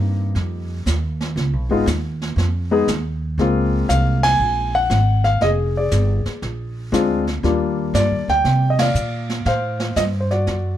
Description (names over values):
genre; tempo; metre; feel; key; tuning
jazz piano trio; 119 BPM; 4/4; swing 68% on 8ths; Eb major; A4 = 439 Hz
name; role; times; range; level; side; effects
warm concert grand piano; melody; 0.0-10.8 s; G3 to Ab5; -20 LUFS; left 2 dB; none
upright bass; bass; 0.0-10.8 s; F1 to C3; -20 LUFS; right 1 dB; none
jazz brush drum kit; drums; 0.4-10.8 s; brushed snare drum, hi-hat, ride cymbal, snare drum; -28 LUFS; right 3 dB; none
room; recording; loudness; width
little or no reverb; none; -17 LUFS; side -11 dB against mid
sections
0.0-10.8 A section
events
band accent 4.2, 8.7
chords
0.0 Abmaj9 (rootless); 1.4 Dbadd9 (rootless); 3.4 Gbmaj9#11; 5.4 Fmadd9; 6.4 Bb9; 7.4 Ebmaj7; 9.5 G9sus4